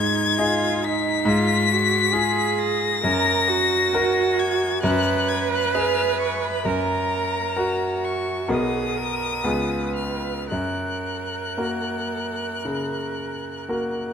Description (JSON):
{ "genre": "classical, slow romantic movement for piano trio", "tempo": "55-70 BPM", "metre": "4/4", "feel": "rubato", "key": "F# major", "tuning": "A4 = 441 Hz", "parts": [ { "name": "rich violin", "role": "melody", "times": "0.0-14.1 s", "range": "A#5 to B6", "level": "-25 LUFS", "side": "left 6 dB", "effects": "none" }, { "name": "rich cello", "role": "second line", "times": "0.0-14.1 s", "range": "D#4 to B4", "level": "-26 LUFS", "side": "right 7 dB", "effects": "none" }, { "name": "bright grand piano", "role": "accompaniment", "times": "0.0-14.1 s", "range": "B1 to B4", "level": "-24 LUFS", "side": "left 1 dB", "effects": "none" } ], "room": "moderate concert hall reverb, RT60 1.8 s", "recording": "close, detailed microphones", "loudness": "-20 LUFS", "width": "side -7 dB against mid", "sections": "0.0-14.1 A section", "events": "none", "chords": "0.0 G#5; 1.3 G#m13; 3.0 F#; 4.8 F#sus24; 6.6 F#; 8.5 Bmaj7; 9.4 C#7; 10.5 F#" }